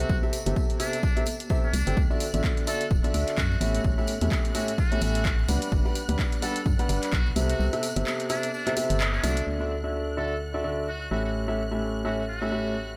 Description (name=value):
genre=piano house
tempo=128 BPM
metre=4/4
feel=swing 57% on 16ths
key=D major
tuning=A4 = 435 Hz
part: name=trumpet with metal mute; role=melody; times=0.0-12.9 s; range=D4 to A4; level=-39 LUFS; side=equal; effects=analog delay
part: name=clear grand piano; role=riff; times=0.0-12.7 s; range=A2 to G5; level=-32 LUFS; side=equal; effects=vintage 12-bit sampler grit, sidechain pumping, low-pass filter, analog delay
part: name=organ-like FM bass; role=bass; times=0.0-13.0 s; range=D1 to G2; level=-31 LUFS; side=equal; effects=tube saturation, sidechain pumping
part: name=punchy analog drum machine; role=drums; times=0.0-9.4 s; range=handclaps, hi-hat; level=-36 LUFS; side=equal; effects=none
part: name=tambourine and congas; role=percussion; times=0.0-9.4 s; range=none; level=-39 LUFS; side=equal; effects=analog delay
part: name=electronic kick drum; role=drums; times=0.1-7.2 s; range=none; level=-28 LUFS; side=equal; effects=none
part: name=clear symphonic string section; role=sustained chords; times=2.0-13.0 s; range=F#6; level=-45 LUFS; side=equal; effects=sidechain pumping
room=light reverb, small room ambience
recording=echo-heavy mix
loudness=-26 LUFS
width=mono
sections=0.0-9.5 A section; 9.5-13.0 B section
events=kick drops out 7.6-9.5; band accent 9.0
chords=0.0 C6; 2.0 Dadd9; 3.6 A7; 5.7 Gmaj7; 7.4 C6; 9.5 Dadd9; 11.1 A7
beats=| 0.10 0.56 1.03 1.50 | 1.97 2.44 2.91 3.38 | 3.85 4.31 4.78 5.25 | 5.72 6.19 6.66 7.13 | 7.59 8.06 8.53 9.00 | 9.47 9.94 10.41 10.88 | 11.35 11.81 12.28 12.75